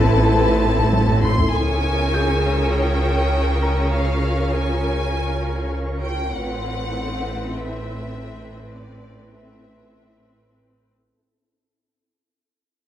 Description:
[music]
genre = cinematic, suspense film score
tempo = 100 BPM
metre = 4/4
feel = straight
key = unclear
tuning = A4 = 440 Hz
[part]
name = rich studio violin section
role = melody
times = 0.0-10.5 s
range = D5 to C6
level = -27 LUFS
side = left 1 dB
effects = none
[part]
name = clear studio violin section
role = second line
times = 0.0-1.3 s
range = A4 to B4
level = -26 LUFS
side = left 3 dB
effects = none
[part]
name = rich studio viola section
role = accompaniment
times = 0.0-10.9 s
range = C4 to B4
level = -29 LUFS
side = equal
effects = none
[part]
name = flickering grainy texture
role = sustained chords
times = 0.0-11.1 s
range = C4 to Db5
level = -26 LUFS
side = left 1 dB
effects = built-in reverb
[part]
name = clear studio cello section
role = bass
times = 0.0-10.9 s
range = A2 to Db3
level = -26 LUFS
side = right 2 dB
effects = none
[part]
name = clear studio double bass section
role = bass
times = 0.0-10.9 s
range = A1 to Db2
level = -29 LUFS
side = right 2 dB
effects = none
[part]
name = saturated sub bass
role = drone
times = 0.0-11.1 s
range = A1 to Db2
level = -24 LUFS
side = equal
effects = none
[part]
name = taiko ensemble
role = drums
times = 0.0-1.7 s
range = none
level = -24 LUFS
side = equal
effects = none
[part]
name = clear trombone section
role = sustained chords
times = 0.3-0.5 s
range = C3 to E3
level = -30 LUFS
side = right 2 dB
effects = none
[part]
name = dark French horn section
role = sustained chords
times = 0.3-0.5 s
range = A3 to B4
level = -27 LUFS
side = left 2 dB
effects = none
[part]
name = rich studio violin section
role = texture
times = 1.5-6.0 s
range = Db6 to E6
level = -35 LUFS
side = left 1 dB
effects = none
[part]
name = bright grand piano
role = texture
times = 2.1-6.4 s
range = Ab4 to G6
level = -31 LUFS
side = left 1 dB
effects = none
[sound]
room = wet recital hall reverb, RT60 1.6 s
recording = dark, warm production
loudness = -18 LUFS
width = side -11 dB against mid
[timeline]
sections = 0.0-1.5 A section; 1.5-11.1 B section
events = drum fill 0.9-1.5; fade-out 1.5-11.1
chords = 0.0 Amadd9; 1.5 Db6; 6.3 Amadd9

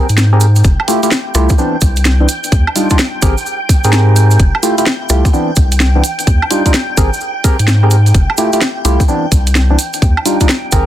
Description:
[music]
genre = UK garage, two-step garage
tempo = 128 BPM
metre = 4/4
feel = swing 65% on 16ths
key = unclear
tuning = A4 = 440 Hz
[part]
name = soft string machine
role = sustained chords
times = 0.0-10.9 s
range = G5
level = -23 LUFS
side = equal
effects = phaser, ensemble chorus, sidechain pumping
[part]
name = percussive organ stab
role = stabs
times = 0.0-10.9 s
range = E3 to Bb4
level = -16 LUFS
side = equal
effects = chorus, ping-pong delay
[part]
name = saturated sub bass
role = bass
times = 0.1-10.9 s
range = F1 to Ab2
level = -10 LUFS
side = equal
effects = sidechain pumping
[part]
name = garage drum kit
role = drums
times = 0.1-10.8 s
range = hi-hat, rim click, snare drum, woodblock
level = -16 LUFS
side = equal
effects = overdrive, studio reverb
[part]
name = cabasa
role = percussion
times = 0.1-10.8 s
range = none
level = -22 LUFS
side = right 4 dB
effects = none
[part]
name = electronic kick drum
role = drums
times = 0.6-10.8 s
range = none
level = -11 LUFS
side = equal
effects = overdrive, studio reverb
[sound]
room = light reverb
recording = dense, heavily limited modern master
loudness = -9 LUFS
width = side -12 dB against mid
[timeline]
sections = 0.0-10.9 A section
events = none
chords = 0.0 Abmaj9; 0.6 Fmaj9; 1.6 Cmaj9; 2.3 Ebmaj9; 3.2 Abmaj9; 4.4 Fmaj9; 5.3 Cmaj9; 6.0 Ebmaj9; 7.0 Abmaj9; 8.1 Fmaj9; 9.1 Cmaj9; 9.8 Ebmaj9

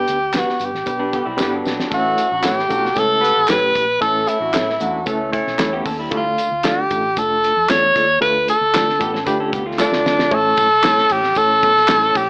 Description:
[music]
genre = uptempo 1960s-style soul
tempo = 114 BPM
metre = 4/4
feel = straight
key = A mixolydian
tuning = A4 = 437 Hz
[part]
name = breathy tenor saxophone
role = melody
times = 0.0-12.3 s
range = D4 to C#5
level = -18 LUFS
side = equal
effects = none
[part]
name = reed electric piano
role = accompaniment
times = 0.0-12.2 s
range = G2 to C#5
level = -27 LUFS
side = equal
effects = fast tremolo
[part]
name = vintage muted fingered electric bass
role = bass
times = 0.0-12.3 s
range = F1 to D3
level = -36 LUFS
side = equal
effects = none
[part]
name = cloth-damped thuddy drum kit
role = drums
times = 0.1-12.3 s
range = hi-hat, kick drum, ride cymbal, snare drum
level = -27 LUFS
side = equal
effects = none
[part]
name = tambourine and handclaps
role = percussion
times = 0.1-12.3 s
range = none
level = -30 LUFS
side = equal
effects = none
[part]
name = mellow electric guitar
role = stabs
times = 0.3-12.0 s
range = D4 to D5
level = -28 LUFS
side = equal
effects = plate reverb
[part]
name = electric guitar through a small old amp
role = riff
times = 1.0-1.9, 5.7-10.3 s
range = F#3 to B4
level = -27 LUFS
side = equal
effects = none
[part]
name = dark horn section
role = second line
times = 1.1-5.8 s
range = C#3 to C#5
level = -27 LUFS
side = equal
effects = none
[sound]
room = moderate club reverb, RT60 0.5 s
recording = AM radio sound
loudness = -17 LUFS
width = mono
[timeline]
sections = 0.0-1.9 A section; 1.9-10.3 B section; 10.3-12.3 C section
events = drum fill 1.4-1.9, 9.8-10.3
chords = 0.0 G; 1.9 A; 6.1 Dm; 10.3 A

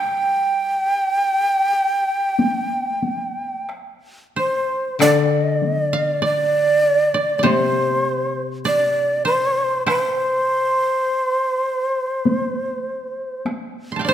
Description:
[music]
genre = japanese traditional, Japanese chamber music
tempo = 44-51 BPM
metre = 4/4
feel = rubato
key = unclear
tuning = A4 = 440 Hz
[part]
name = breathy shakuhachi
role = melody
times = 0.0-14.1 s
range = C5 to G5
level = -19 LUFS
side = right 1 dB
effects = none
[part]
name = koto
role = second line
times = 0.0-14.1 s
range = C5 to C6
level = -24 LUFS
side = right 3 dB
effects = none
[part]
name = koto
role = accompaniment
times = 0.0-10.8 s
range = C3 to G3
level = -23 LUFS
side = left 6 dB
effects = none
[part]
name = taiko ensemble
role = percussion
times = 2.4-13.7 s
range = none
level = -24 LUFS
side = left 1 dB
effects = none
[sound]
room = wet scoring stage reverb, RT60 1.7 s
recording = none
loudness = -17 LUFS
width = side -10 dB against mid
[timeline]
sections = 0.0-5.0 A section; 5.0-14.1 B section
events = none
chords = none

